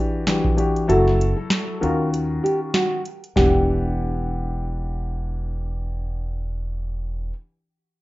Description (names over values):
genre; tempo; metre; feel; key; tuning
hip hop, boom-bap hip-hop; 97 BPM; 4/4; swing 55% on 16ths; E minor; A4 = 440 Hz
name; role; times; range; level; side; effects
dark concert grand piano; accompaniment; 0.0-7.3 s; D#3 to F#5; -24 LUFS; left 2 dB; high-pass filter, low-pass filter
booming analog drum machine; drums; 0.3-3.5 s; hi-hat, kick drum, snare drum; -23 LUFS; equal; none
nylon-string guitar; melody; 0.9-5.2 s; F#4 to A#4; -24 LUFS; right 1 dB; high-pass filter, low-pass filter
upright bass; bass; 0.9-7.3 s; E1 to D#2; -24 LUFS; equal; none
room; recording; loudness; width
moderate studio reverb, RT60 0.6 s; rough home demo mix, nothing above 7.6 kHz; -20 LUFS; side -18 dB against mid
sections
0.0-3.4 A section; 3.4-5.8 B section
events
kick muted 0.9-3.4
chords
0.0 Em9; 0.9 F#m7; 1.8 D#m9; 3.4 Em9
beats
0.27 | 0.89 1.51 2.12 2.74 | 3.36 3.98 4.60 5.22